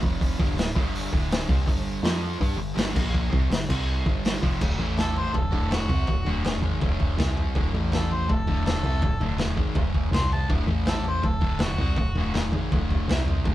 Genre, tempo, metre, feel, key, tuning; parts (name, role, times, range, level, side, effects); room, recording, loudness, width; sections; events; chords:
garage rock duo or trio; 163 BPM; 4/4; straight; A4 = 440 Hz
fuzz guitar; riff; 0.0-13.5 s; D2 to G4; -29 LUFS; equal; distortion
solid FM bass; bass; 0.0-13.5 s; D1 to G2; -28 LUFS; equal
crunchy breakbeat drum kit; drums; 0.0-13.5 s; crash cymbal, hi-hat, kick drum, snare drum, toms; -25 LUFS; equal
warm harmonica; melody; 5.0-12.3 s; F#4 to C6; -31 LUFS; equal; overdrive
light reverb; band playing live in one room; -22 LUFS; side -14 dB against mid
0.0-4.6 A section; 4.6-13.5 B section
0.0 F5; 0.4 D5; 0.8 G5; 1.1 D5; 1.7 G5; 2.0 F5; 2.4 G5; 3.0 Bb5; 3.3 G5; 3.7 C5; 4.1 G5; 4.6 D5; 4.8 A5; 5.3 D; 7.2 C5; 7.6 D5; 7.7 A5; 8.3 D5; 10.1 C5; 10.5 D5; 10.7 A5; 11.2 D; 13.1 C5